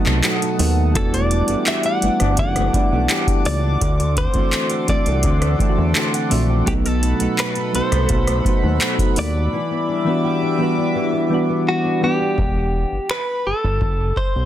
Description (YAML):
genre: contemporary R&B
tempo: 84 BPM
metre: 4/4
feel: straight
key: E minor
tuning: A4 = 440 Hz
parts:
  - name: soft electric-piano-like synth keys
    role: accompaniment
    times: 0.0-12.4 s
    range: E3 to A5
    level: -22 LUFS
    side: right 3 dB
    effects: chorus
  - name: chorused pulse-width pad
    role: sustained chords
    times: 0.0-12.4 s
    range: G3 to D#6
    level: -28 LUFS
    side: right 1 dB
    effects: sidechain pumping
  - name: flamenco guitar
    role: arpeggios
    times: 0.0-13.0 s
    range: B2 to G4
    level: -25 LUFS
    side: left 6 dB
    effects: tape echo
  - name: fat analog bass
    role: bass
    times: 0.1-14.5 s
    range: E1 to E2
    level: -19 LUFS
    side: equal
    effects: none
  - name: booming analog drum machine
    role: drums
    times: 0.1-14.4 s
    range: finger snaps, handclaps, hi-hat, kick drum, rim click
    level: -21 LUFS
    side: equal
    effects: soft clipping on snare
  - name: direct-recorded clean electric guitar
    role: melody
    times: 1.0-14.5 s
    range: F#4 to F#5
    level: -24 LUFS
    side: equal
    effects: none
room: little or no reverb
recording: dense, heavily limited modern master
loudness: -16 LUFS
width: side -12 dB against mid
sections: 0.0-12.4 A section; 12.4-14.5 B section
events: synth keys fill 5.6-6.7; silent gap 9.5-12.4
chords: 0.0 B7; 1.0 Em11; 3.8 D7; 6.7 B7; 9.5 Em7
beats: 0.24 | 0.95 1.67 2.38 3.10 | 3.81 4.52 5.24 5.95 | 6.67 7.38 8.10 8.81 | 9.52 10.24 10.95 11.67 | 12.38 13.10 13.81